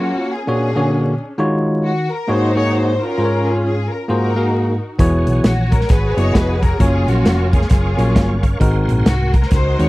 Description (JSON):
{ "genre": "uptempo gospel", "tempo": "133 BPM", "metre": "4/4", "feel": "swing 62% on 8ths", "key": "unclear", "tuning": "A4 = 441 Hz", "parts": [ { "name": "warm studio string section", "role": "melody", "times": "0.0-9.9 s", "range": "Bb3 to Db5", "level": "-21 LUFS", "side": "left 1 dB", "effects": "none" }, { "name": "bell-like tine electric piano", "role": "accompaniment", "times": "0.0-9.9 s", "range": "Ab2 to F5", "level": "-17 LUFS", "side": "equal", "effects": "none" }, { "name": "bright tonewheel organ", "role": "sustained chords", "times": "5.0-9.9 s", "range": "Bb4 to Db6", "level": "-29 LUFS", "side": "right 3 dB", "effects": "slow rotary speaker, chorus vibrato" }, { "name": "hollow-body short-scale fingered electric bass", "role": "bass", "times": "5.0-9.9 s", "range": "E1 to Eb2", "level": "-17 LUFS", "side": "equal", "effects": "none" }, { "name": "natural country drum kit", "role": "drums", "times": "5.0-9.9 s", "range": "hi-hat, kick drum, snare drum", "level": "-15 LUFS", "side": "equal", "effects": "none" } ], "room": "little or no reverb", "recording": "dry, close 1970s-style studio recording, vinyl crackle", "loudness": "-14 LUFS", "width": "side -19 dB against mid", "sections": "0.0-9.9 A section", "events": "none", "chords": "0.5 Bb7alt; 1.4 Ebm11; 2.3 Ab9sus4; 3.2 Db/Ab; 4.1 Ab13; 5.0 E69; 6.8 Gbmaj7; 8.6 Ab9", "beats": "0.03 0.48 0.93 | 1.38 1.83 2.28 2.73 | 3.19 3.64 4.09 4.54 | 4.99 5.44 5.89 6.35 | 6.80 7.25 7.70 8.15 | 8.61 9.06 9.51" }